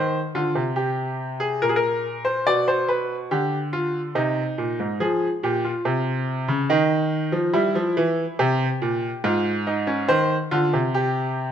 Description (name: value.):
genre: classical, baroque-style two-part invention for grand piano.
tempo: 71 BPM.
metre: 3/4.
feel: straight.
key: unclear.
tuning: A4 = 440 Hz.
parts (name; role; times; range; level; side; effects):
bright baby grand piano; solo; 0.0-11.5 s; Ab2 to D5; -20 LUFS; equal; none.
room: moderate recital hall reverb, RT60 1.4 s.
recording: close, detailed microphones.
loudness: -20 LUFS.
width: side -9 dB against mid.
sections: 0.0-11.5 A section.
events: none.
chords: 0.0 C5; 1.6 Bbsus2; 2.5 G7/B; 4.1 Cm; 5.0 Fm; 6.7 Ebsus2; 7.5 C7; 9.2 Fm/Ab; 10.1 Cm.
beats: 0.76 1.61 | 2.45 3.30 4.14 | 4.99 5.84 6.68 | 7.54 8.39 9.24 | 10.09 10.94.